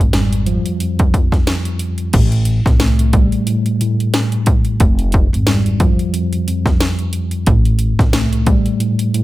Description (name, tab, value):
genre	hip hop, boom-bap hip-hop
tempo	90 BPM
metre	4/4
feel	swing 57% on 16ths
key	A minor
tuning	A4 = 440 Hz
part	mellow tine electric piano	accompaniment	0.0-9.2 s	F2 to A3	-17 LUFS	equal	medium stereo tremolo, cassette tape
part	upright bass	bass	0.0-8.6 s	F1 to C2	-17 LUFS	equal	none
part	techno drum kit	drums	0.0-9.2 s	crash cymbal, hi-hat, kick drum, snare drum	-15 LUFS	equal	none
room	little or no reverb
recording	none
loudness	-13 LUFS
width	side -16 dB against mid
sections	0.0-2.1 A section; 2.1-9.2 B section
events	none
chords	0.0 Fmadd9; 2.1 Am7; 4.8 Fmadd9; 7.5 Am7